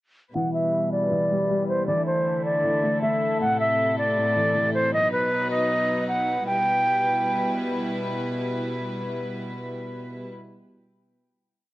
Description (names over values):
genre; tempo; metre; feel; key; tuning
hip hop, trap; 157 BPM; 4/4; half-time; E minor; A4 = 441 Hz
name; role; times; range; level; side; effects
reedy concert flute; melody; 0.3-7.6 s; B4 to G5; -23 LUFS; equal; low-pass filter, tape echo
dark studio string section; sustained chords; 0.3-10.3 s; B2 to B4; -28 LUFS; equal; low-pass filter
dark grand piano; accompaniment; 0.4-5.0 s; A2 to A3; -28 LUFS; left 1 dB; low-pass filter
room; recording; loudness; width
light reverb, studio reverb; dry, gritty hardware recording; -22 LUFS; side -17 dB against mid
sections
0.3-6.5 breakdown; 6.5-9.5 final chord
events
filter sweep 0.3-6.5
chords
0.3 Em; 1.9 Dsus2; 3.4 Am; 4.9 B; 6.5 Em